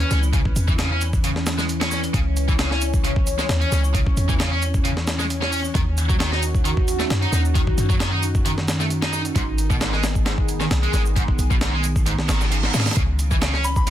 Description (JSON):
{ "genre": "breakbeat, breaks", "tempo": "133 BPM", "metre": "4/4", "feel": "swing 53% on 16ths", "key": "C# minor", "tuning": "A4 = 440 Hz", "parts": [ { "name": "phased analog pad", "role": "sustained chords", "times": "0.0-13.9 s", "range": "D#3 to C#5", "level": "-28 LUFS", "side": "equal", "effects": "phaser, chorus, vintage 12-bit sampler grit, sidechain pumping" }, { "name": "high-gain distorted guitar", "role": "riff", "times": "0.0-13.9 s", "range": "G#2 to D#4", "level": "-26 LUFS", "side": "right 1 dB", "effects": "distortion, tube saturation, dub echo" }, { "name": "warm 808-style bass", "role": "bass", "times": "0.0-13.9 s", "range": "G#1 to G#2", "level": "-23 LUFS", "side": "equal", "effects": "none" }, { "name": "breakbeat sampler-style drum kit", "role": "drums", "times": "0.0-13.9 s", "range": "hi-hat, kick drum, snare drum", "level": "-23 LUFS", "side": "equal", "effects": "none" }, { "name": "shaker", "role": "drums", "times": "0.1-13.9 s", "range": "none", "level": "-35 LUFS", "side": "right 4 dB", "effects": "none" }, { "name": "reverse cymbal", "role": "sound effects", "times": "12.2-13.0 s", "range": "none", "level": "-27 LUFS", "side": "right 5 dB", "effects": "none" }, { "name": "soft synth bell", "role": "melody", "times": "13.6-13.8 s", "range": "B5", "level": "-24 LUFS", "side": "left 2 dB", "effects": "chorus, small speaker sound" } ], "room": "light reverb", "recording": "dense, heavily limited modern master", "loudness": "-18 LUFS", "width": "side -12 dB against mid", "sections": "0.0-13.9 A section", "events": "reverse cymbal 12.2-13.0", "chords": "0.0 C#m7; 5.7 D#m7; 9.4 G#m; 13.0 C#m7" }